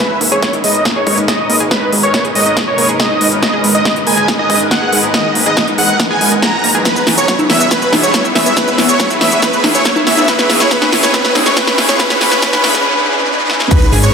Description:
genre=uplifting trance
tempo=140 BPM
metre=4/4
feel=straight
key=G# minor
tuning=A4 = 440 Hz
part: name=big supersaw lead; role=melody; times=0.0-14.1 s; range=B4 to A#5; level=-14 LUFS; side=equal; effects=sidechain pumping, low-pass filter, tape echo
part: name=lush unison pad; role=sustained chords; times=0.0-14.1 s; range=G#3 to B4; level=-19 LUFS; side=equal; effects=chorus, phaser, sidechain pumping
part: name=analog pluck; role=arpeggios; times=0.0-14.1 s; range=G#2 to G#4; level=-21 LUFS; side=right 2 dB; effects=chorus, sidechain pumping, tape echo
part: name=big-room dance drum kit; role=drums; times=0.0-14.1 s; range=congas, crash cymbal, hi-hat, shaker, snare drum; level=-14 LUFS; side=equal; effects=none
part: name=electronic kick drum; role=drums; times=0.0-13.8 s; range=none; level=-20 LUFS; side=equal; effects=none
part: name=riser and sub drop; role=sound effects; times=1.4-14.1 s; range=none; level=-22 LUFS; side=equal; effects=none
part: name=fat analog bass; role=bass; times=0.2-14.1 s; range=F#1 to E2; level=-23 LUFS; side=equal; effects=none
room=wet huge ambient reverb, RT60 8.7 s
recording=dreamy mix soaked in reverb, high-pass filter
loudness=-10 LUFS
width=side -6 dB against mid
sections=0.0-13.7 A section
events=build-up 0.0-13.7; drum fill 0.0-12.9, 13.5; filter sweep on synth pluck 0.0-13.7; riser 1.4-13.7; break 12.9-13.7; impact 13.7-14.1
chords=0.0 G#madd9; 6.9 E; 10.3 C#m

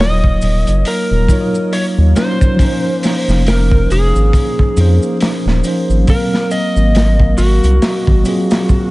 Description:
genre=trip hop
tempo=69 BPM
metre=4/4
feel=swing 58% on 16ths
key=unclear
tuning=A4 = 442 Hz
part: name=electric slide guitar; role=melody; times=0.0-8.9 s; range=Gb4 to Eb5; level=-20 LUFS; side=left 1 dB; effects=tape echo
part: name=mellow tine electric piano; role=accompaniment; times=0.0-8.9 s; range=F3 to F5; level=-18 LUFS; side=equal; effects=fast stereo tremolo, harmonic tremolo
part: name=warbly tape-like pad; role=sustained chords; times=0.0-8.9 s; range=Bb3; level=-25 LUFS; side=equal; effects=chorus, built-in reverb, phaser, vintage 12-bit sampler grit
part: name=round analog bass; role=bass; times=0.0-8.2 s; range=Eb1 to F2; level=-12 LUFS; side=equal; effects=none
part: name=crunchy breakbeat drum kit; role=drums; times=0.0-8.9 s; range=hi-hat, kick drum, snare drum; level=-16 LUFS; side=equal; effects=none
part: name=maracas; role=percussion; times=0.4-8.9 s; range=none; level=-35 LUFS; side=right 2 dB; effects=none
room=studio ambience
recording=vinyl crackle, nothing above 10.6 kHz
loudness=-11 LUFS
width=side -20 dB against mid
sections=0.0-8.9 A section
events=none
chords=0.0 Ebm9; 2.6 Dbmaj9/F; 6.1 Ab13

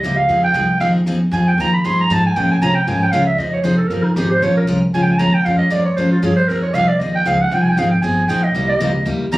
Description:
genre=acoustic string swing (jazz manouche)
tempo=233 BPM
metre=4/4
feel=swing 57% on 8ths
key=F minor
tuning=A4 = 442 Hz
part: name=growling clarinet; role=second line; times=0.0-9.4 s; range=Eb4 to C6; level=-17 LUFS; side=right 2 dB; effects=none
part: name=picked steel-string acoustic guitar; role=accompaniment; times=0.0-9.4 s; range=C3 to Bb4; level=-17 LUFS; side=equal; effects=none
part: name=upright bass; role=bass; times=0.0-9.4 s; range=F1 to C3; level=-22 LUFS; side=equal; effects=none
room=wet studio reverb, RT60 0.7 s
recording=recorded on a phone in the room, club reverb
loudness=-14 LUFS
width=side -18 dB against mid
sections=0.3-9.4 A section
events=clarinet solo 0.0-9.4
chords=0.3 Fm9; 2.4 Bbm9; 3.4 Fm9; 4.4 Bbm9; 6.5 Fm9; 8.5 C7#9

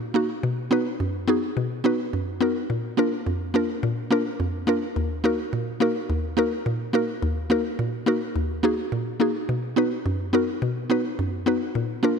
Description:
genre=dancehall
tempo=106 BPM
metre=4/4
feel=straight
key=unclear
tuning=A4 = 440 Hz
part: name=mallet-like synth pluck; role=solo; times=0.0-12.2 s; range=Eb2 to B4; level=-22 LUFS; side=equal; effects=chorus
room=moderate lush hall reverb, RT60 2.0 s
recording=dreamy mix soaked in reverb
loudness=-22 LUFS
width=side -6 dB against mid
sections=0.4-12.2 A section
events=none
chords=0.4 B; 2.7 Bb; 5.0 Ebm; 9.5 B

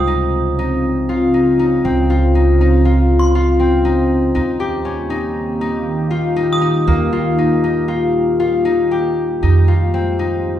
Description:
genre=contemporary instrumental, chamber music in an uneven meter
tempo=119 BPM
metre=5/4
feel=straight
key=unclear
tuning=A4 = 440 Hz
part: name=deep dark ambient pad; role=sustained chords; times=0.0-10.6 s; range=Db3 to G4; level=-19 LUFS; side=right 1 dB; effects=chorus, built-in reverb
part: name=concert harp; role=arpeggios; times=0.0-10.6 s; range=Bb3 to G4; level=-17 LUFS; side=left 4 dB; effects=none
part: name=upright bass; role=bass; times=0.0-10.6 s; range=Db2 to F2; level=-18 LUFS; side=right 2 dB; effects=none
part: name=glockenspiel with brass mallets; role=texture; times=0.0-7.0 s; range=C6 to Eb6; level=-26 LUFS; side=right 6 dB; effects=none
room=wet recital hall reverb, RT60 1.4 s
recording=heard from further back in the room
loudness=-13 LUFS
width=side -11 dB against mid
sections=0.0-10.6 A section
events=none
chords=0.0 Dbmaj7; 4.4 Eb; 9.4 Fmadd9

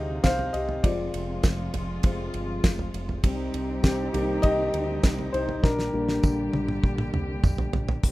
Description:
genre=piano-driven pop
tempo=100 BPM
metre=4/4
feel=straight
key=C minor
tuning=A4 = 441 Hz
part: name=dark upright piano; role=accompaniment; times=0.0-8.1 s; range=C3 to F5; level=-28 LUFS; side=left 1 dB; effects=none
part: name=muted chamber string section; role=sustained chords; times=0.0-8.1 s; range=C3 to G4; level=-34 LUFS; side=equal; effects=none
part: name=picked electric bass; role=bass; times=0.0-8.1 s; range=F1 to D2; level=-32 LUFS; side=equal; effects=none
part: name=damped 70s drum kit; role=drums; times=0.2-8.1 s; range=hi-hat, kick drum, ride cymbal, snare drum, toms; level=-24 LUFS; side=equal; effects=none
part: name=tambourine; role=percussion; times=0.2-7.6 s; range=none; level=-44 LUFS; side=right 3 dB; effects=none
room=little or no reverb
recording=rough home demo mix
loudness=-23 LUFS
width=side -18 dB against mid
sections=0.0-8.0 A section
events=upright piano solo 0.0-8.0; drum fill 5.6-8.0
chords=0.0 Cm; 0.8 Fm; 3.2 Cm; 5.6 Gm/Bb

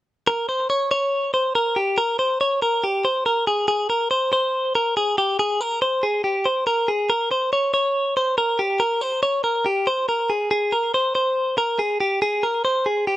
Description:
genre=indie pop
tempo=141 BPM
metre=4/4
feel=straight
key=unclear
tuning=A4 = 440 Hz
part: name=direct-recorded clean electric guitar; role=solo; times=0.3-13.2 s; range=G4 to Db5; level=-19 LUFS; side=equal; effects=none
room=light reverb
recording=none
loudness=-19 LUFS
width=side -15 dB against mid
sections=0.3-7.1 A section; 7.1-13.2 B section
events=none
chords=none

